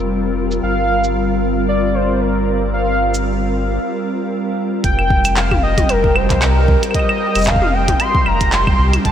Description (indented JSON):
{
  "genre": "IDM",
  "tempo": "114 BPM",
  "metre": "4/4",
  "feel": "swing 56% on 16ths",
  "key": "unclear",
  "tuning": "A4 = 440 Hz",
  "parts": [
    { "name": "glassy FM pad", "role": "sustained chords", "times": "0.0-9.1 s", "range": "G3 to Bb4", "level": "-20 LUFS", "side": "left 1 dB", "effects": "ensemble chorus, built-in reverb, vintage 12-bit sampler grit" },
    { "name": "warm sub bass", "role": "bass", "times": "0.0-9.1 s", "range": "F1 to C2", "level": "-19 LUFS", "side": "equal", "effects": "none" },
    { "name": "glitchy drum kit", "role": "drums", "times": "0.5-9.1 s", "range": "claves, handclaps, hi-hat, shaker, toms", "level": "-20 LUFS", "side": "equal", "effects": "low-pass filter on hats, low-pass filter on perc, low-pass filter on snare, low-pass filter on toms" },
    { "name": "warm velvety synth lead", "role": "melody", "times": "0.6-9.1 s", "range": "Bb4 to C6", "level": "-19 LUFS", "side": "equal", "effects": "chorus, ping-pong delay" },
    { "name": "electronic kick drum", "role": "drums", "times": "4.8-9.1 s", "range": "none", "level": "-18 LUFS", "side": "equal", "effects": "none" },
    { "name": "flickering grainy texture", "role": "texture", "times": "5.5-9.1 s", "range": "G4 to G5", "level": "-30 LUFS", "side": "equal", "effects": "built-in reverb, analog chorus" }
  ],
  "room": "wet huge ambient reverb, RT60 7.8 s",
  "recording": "dreamy mix soaked in reverb",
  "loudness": "-14 LUFS",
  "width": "side -9 dB against mid",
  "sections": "0.0-4.8 A section; 4.8-9.1 B section",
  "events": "break 3.8-4.8",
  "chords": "0.0 Fsus24; 0.6 Bbsus2/G; 4.8 Fsus4"
}